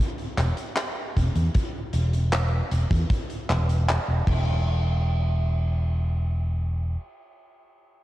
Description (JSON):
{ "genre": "vaporwave", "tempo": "77 BPM", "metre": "4/4", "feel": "straight", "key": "unclear", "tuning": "A4 = 436 Hz", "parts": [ { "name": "big rock drum kit", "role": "drums", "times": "0.2-4.4 s", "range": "crash cymbal, handclaps, hi-hat", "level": "-30 LUFS", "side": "equal", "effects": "none" }, { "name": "fretless electric bass", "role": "bass", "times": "0.4-7.0 s", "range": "E1 to E2", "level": "-22 LUFS", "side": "equal", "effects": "tube saturation, low-pass filter" }, { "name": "kick drum", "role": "drums", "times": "1.2-4.4 s", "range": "none", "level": "-27 LUFS", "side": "equal", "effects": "none" } ], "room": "light reverb", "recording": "cassette tape", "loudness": "-22 LUFS", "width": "side -16 dB against mid", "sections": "0.0-4.7 A section; 4.7-7.8 B section", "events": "filter sweep on fretless electric bass 0.0-4.7", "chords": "none", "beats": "0.77 | 1.55 2.33 3.11 3.89 | 4.67 5.44 6.22" }